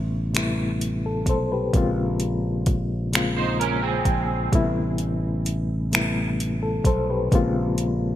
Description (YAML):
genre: slow six-eight R&B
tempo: 43 BPM (dotted quarters)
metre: 6/8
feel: straight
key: unclear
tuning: A4 = 441 Hz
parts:
  - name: bright reed electric piano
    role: accompaniment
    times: 0.0-8.2 s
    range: C3 to C5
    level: -25 LUFS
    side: left 2 dB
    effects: fast tremolo
  - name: fretless electric bass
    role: bass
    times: 0.0-8.2 s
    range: A1 to B1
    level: -26 LUFS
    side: equal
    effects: none
  - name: smooth R&B drum kit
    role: drums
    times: 0.3-8.0 s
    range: finger snaps, hi-hat, kick drum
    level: -24 LUFS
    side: equal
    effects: gated reverb
  - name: electric guitar at the edge of break-up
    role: second line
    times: 3.4-4.5 s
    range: C4 to C5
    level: -26 LUFS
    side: right 5 dB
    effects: ensemble chorus
room: light reverb, digital ambience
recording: bright 1980s-style digital production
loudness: -21 LUFS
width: side -12 dB against mid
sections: 0.0-8.2 A section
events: none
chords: 0.0 Am9; 1.7 Bbm9; 4.5 Am9; 7.3 Bbm9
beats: 0.34 | 1.74 3.13 | 4.53 5.92 | 7.32